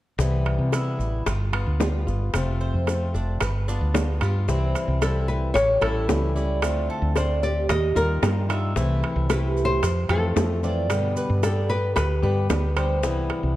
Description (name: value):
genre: latin, Cuban son and guajira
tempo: 112 BPM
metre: 4/4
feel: straight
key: C major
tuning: A4 = 440 Hz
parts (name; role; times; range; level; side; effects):
- fingerpicked plugged-in swing-style acoustic guitar; accompaniment; 0.2-13.6 s; B2 to G4; -29 LUFS; left 3 dB; none
- woody fretless electric bass; bass; 0.2-13.6 s; F1 to C3; -24 LUFS; equal; wide subtle chorus
- bongos; percussion; 0.2-13.6 s; none; -31 LUFS; left 5 dB; none
- maracas; percussion; 0.2-13.3 s; none; -41 LUFS; right 8 dB; none
- timbales; percussion; 0.5-13.6 s; none; -31 LUFS; right 5 dB; none
- Cuban tres; arpeggios; 0.7-13.0 s; C4 to E5; -31 LUFS; right 4 dB; none
- nylon-string guitar; melody; 5.0-12.5 s; A4 to Eb5; -26 LUFS; left 2 dB; none
room: light reverb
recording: dark, warm production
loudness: -21 LUFS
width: side -15 dB against mid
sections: 0.2-4.5 A section; 4.5-13.6 B section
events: none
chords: 0.2 Cmaj7; 1.3 G7; 2.3 F; 3.4 G7; 4.5 C; 5.6 A7; 6.6 Dm7; 7.7 Ebadd9; 8.8 C6; 9.8 Fmaj7; 10.9 G; 13.0 Cmaj7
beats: | 0.19 0.73 1.27 1.80 | 2.34 2.88 3.41 3.95 | 4.49 5.02 5.56 6.09 | 6.63 7.16 7.70 8.23 | 8.77 9.30 9.83 10.37 | 10.90 11.44 11.97 12.50 | 13.04